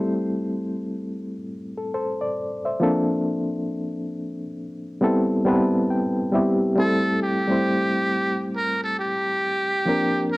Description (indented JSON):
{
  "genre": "hip hop",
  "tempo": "68 BPM",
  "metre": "4/4",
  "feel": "swing 63% on 16ths",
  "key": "A phrygian",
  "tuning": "A4 = 439 Hz",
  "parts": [
    { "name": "barky reed electric piano", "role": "accompaniment", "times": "0.0-10.4 s", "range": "F3 to A5", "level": "-22 LUFS", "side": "equal", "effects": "overdrive, fast tremolo, cassette tape, low-pass filter" },
    { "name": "trumpet with metal mute", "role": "melody", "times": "6.8-10.4 s", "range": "G4 to Bb4", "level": "-23 LUFS", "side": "right 1 dB", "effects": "low-pass filter" }
  ],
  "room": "moderate studio reverb, RT60 0.6 s",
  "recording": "home recording on cassette",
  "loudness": "-21 LUFS",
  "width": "side -21 dB against mid",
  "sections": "0.0-6.8 A section; 6.8-10.4 B section",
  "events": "reed electric piano fill 5.0-6.8",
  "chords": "0.0 Am7; 2.8 Bbmaj9; 5.0 Am9; 6.8 Am7; 9.9 Bbadd9"
}